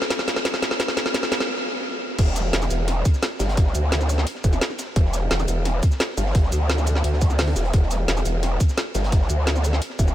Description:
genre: dark technical drum and bass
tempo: 173 BPM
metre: 4/4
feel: straight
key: E minor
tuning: A4 = 440 Hz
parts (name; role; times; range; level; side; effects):
- drum and bass drum kit; drums; 0.0-10.1 s; crash cymbal, hi-hat, shaker, snare drum; -25 LUFS; equal; none
- crunchy breakbeat drum kit; drums; 0.1-10.1 s; hi-hat, snare drum; -38 LUFS; equal; none
- electronic kick drum; drums; 0.1-10.1 s; none; -19 LUFS; equal; high-pass filter on kick, high-pass filter on room
- growl bass; bass; 2.2-10.1 s; E1 to D2; -21 LUFS; equal; chorus, overdrive
room: light reverb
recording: none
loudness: -19 LUFS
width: side -13 dB against mid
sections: 0.0-2.2 A section; 2.2-10.1 B section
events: build-up 0.0-2.2; drum fill 0.0-1.5; stop 1.5-2.2; drop 2.2-10.1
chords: none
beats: 0.11 0.45 | 0.80 1.15 1.49 1.84 | 2.19 2.53 2.88 3.23 | 3.57 3.92 4.27 4.61 | 4.96 5.31 5.66 6.00 | 6.35 6.70 7.04 7.39 | 7.74 8.08 8.43 8.78 | 9.12 9.47 9.82

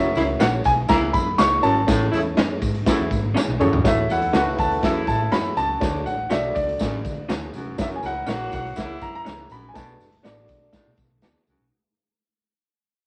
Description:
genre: uptempo 1960s-style soul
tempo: 122 BPM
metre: 4/4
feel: straight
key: A major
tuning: A4 = 442 Hz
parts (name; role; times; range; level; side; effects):
- warm concert grand piano; melody; 0.0-11.4 s; D5 to C#6; -26 LUFS; equal; none
- barky reed electric piano; accompaniment; 0.0-10.9 s; C#4 to D5; -28 LUFS; equal; overdrive, fast tremolo
- warm baritone saxophone; riff; 0.0-11.7 s; D2 to B2; -32 LUFS; equal; none
- vintage muted fingered electric bass; bass; 0.0-11.7 s; F1 to D3; -32 LUFS; equal; none
- warm horn section; second line; 0.2-9.5 s; C#3 to A#4; -29 LUFS; equal; none
- raw garage drum kit; drums; 0.2-11.6 s; hi-hat, kick drum, snare drum, toms; -27 LUFS; equal; none
- tambourine; percussion; 0.2-11.6 s; none; -44 LUFS; equal; none
- electric guitar through a small old amp; stabs; 0.4-11.3 s; A#3 to D5; -29 LUFS; equal; tremolo
room: wet small room reverb, RT60 0.6 s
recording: none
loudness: -22 LUFS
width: mono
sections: 0.0-3.8 A section; 3.8-11.7 B section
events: drum fill 3.4-3.8; fade-out 3.8-11.7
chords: 0.0 F#7; 1.9 Amaj7; 3.8 A6; 5.8 Dmaj7; 7.8 F#7; 9.8 Bm7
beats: 0.40 0.90 1.39 | 1.88 2.37 2.86 3.35 | 3.85 4.34 4.83 5.32 | 5.81 6.31 6.80 7.29 | 7.78 8.28 8.77 9.26 | 9.75 10.24 10.73 11.23

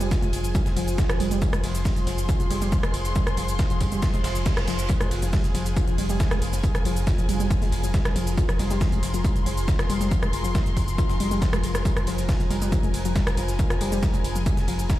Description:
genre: driving peak-time techno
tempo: 138 BPM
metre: 4/4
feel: straight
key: F minor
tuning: A4 = 444 Hz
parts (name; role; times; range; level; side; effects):
- warbly dusty pluck; riff; 0.0-15.0 s; F3 to F4; -30 LUFS; equal; chorus, sidechain pumping, dub echo
- saturated sub bass; bass; 0.0-14.9 s; F1; -27 LUFS; equal; tube saturation, sidechain pumping, low-pass filter
- metallic inharmonic drone; drone; 0.0-15.0 s; F3; -35 LUFS; left 2 dB; chorus, built-in reverb, phaser, sidechain pumping
- techno drum kit; drums; 0.0-15.0 s; hi-hat, ride cymbal, rim click, shaker; -33 LUFS; right 1 dB; sidechain pumping on hats, sidechain pumping on perc, sidechain pumping on cymbals
- dark studio string section; texture; 0.0-15.0 s; F4 to C6; -33 LUFS; left 1 dB; sidechain pumping
- dusty soul sampler-style drum kit; drums; 0.1-15.0 s; hi-hat, snare drum, tambourine; -40 LUFS; equal; overdrive, high-pass filter on snare, high-pass filter on hats, high-pass filter on perc
- electronic kick drum; drums; 0.1-15.0 s; none; -23 LUFS; equal; none
- reverse cymbal; sound effects; 4.2-4.9 s; none; -40 LUFS; right 5 dB; none
room: little or no reverb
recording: played on a big sound system in a bare room, stone room reverb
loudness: -21 LUFS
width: side -15 dB against mid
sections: 0.0-15.0 A section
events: reverse cymbal 4.2-4.9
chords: 0.0 Fm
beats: 0.11 0.55 0.98 | 1.42 1.85 2.29 2.72 | 3.16 3.59 4.03 4.46 | 4.90 5.33 5.77 6.20 | 6.64 7.07 7.50 7.94 | 8.38 8.81 9.24 9.68 | 10.11 10.55 10.98 11.42 | 11.85 12.29 12.72 13.16 | 13.59 14.03 14.46 14.90

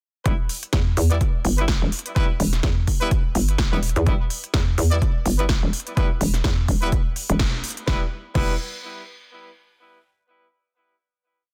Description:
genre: bass house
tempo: 126 BPM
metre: 4/4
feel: swing 56% on 16ths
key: E minor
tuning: A4 = 439 Hz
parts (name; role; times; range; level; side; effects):
- bright horn section; stabs; 0.3-8.5 s; G3 to D5; -32 LUFS; equal; sidechain pumping, delay
- hollow knocking FM bass; bass; 0.3-8.6 s; E1 to E2; -24 LUFS; equal; overdrive, sidechain pumping
- big-room dance drum kit; drums; 0.3-8.5 s; crash cymbal, hi-hat, snare drum; -31 LUFS; equal; none
- electronic kick drum; drums; 0.3-8.5 s; none; -24 LUFS; equal; none
room: little or no reverb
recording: dense, heavily limited modern master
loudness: -22 LUFS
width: mono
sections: 0.3-7.9 drop; 7.9-9.8 final chord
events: drop 0.3-7.9; band accent 7.4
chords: 0.3 Em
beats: | 0.26 0.73 1.21 1.69 | 2.16 2.64 3.11 3.59 | 4.07 4.54 5.02 5.50 | 5.97 6.45 6.92 7.40 | 7.88 8.35

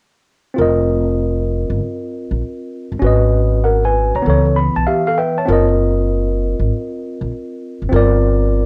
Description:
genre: hip hop, jazz-hop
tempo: 98 BPM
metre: 4/4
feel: swing 65% on 16ths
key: F phrygian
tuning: A4 = 441 Hz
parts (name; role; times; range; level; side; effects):
- tine electric piano; accompaniment; 0.5-8.7 s; E3 to Cb6; -19 LUFS; equal; overdrive
- upright bass; bass; 0.6-8.7 s; F1 to Db2; -19 LUFS; equal; transformer saturation
room: moderate studio reverb, RT60 0.6 s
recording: worn, warbling old tape, cassette tape, warbly pitch drift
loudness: -16 LUFS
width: mono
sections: 0.6-8.7 A section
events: tine electric piano fill 4.3-5.5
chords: 0.6 F7sus4; 3.0 Abm9; 4.3 Db7alt; 5.5 Gbmaj7; 7.9 Gm7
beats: | 0.58 1.20 1.81 2.42 | 3.03 3.64 4.26 4.87 | 5.48 6.09 6.71 7.32 | 7.93 8.54

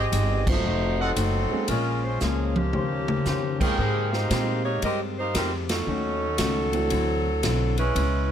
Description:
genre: jazz, big band swing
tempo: 115 BPM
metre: 4/4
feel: swing 66% on 8ths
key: Ab major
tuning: A4 = 438 Hz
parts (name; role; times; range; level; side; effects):
- warm saxophone section; melody; 0.0-8.3 s; Eb3 to Eb5; -27 LUFS; equal; none
- clear trumpet section; stabs; 0.0-4.3 s; Gb4 to G5; -31 LUFS; right 1 dB; none
- upright bass; bass; 0.0-8.3 s; F1 to Bb2; -27 LUFS; equal; none
- vintage hollow-body jazz guitar; accompaniment; 0.1-8.3 s; Ab2 to C5; -31 LUFS; left 4 dB; none
- swinging big-band drum kit; drums; 0.1-8.1 s; crash cymbal, hi-hat, kick drum, ride cymbal, snare drum, toms; -29 LUFS; equal; none
- warm concert grand piano; accompaniment; 0.5-7.4 s; Fb3 to Ab4; -32 LUFS; right 4 dB; none
room: light reverb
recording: none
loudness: -22 LUFS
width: side -9 dB against mid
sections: 0.0-3.8 A section; 3.8-8.3 B section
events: band accent 0.4, 5.6; drum fill 2.2-3.3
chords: 0.0 Abmaj7; 0.7 F7b9; 1.7 Bbm7; 2.7 Eb13; 3.8 Abmaj9; 5.9 Ebm7b5; 6.9 D9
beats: 0.13 0.65 1.18 | 1.70 2.22 2.74 3.27 | 3.79 4.31 4.83 5.36 | 5.88 6.40 6.92 7.44 | 7.97

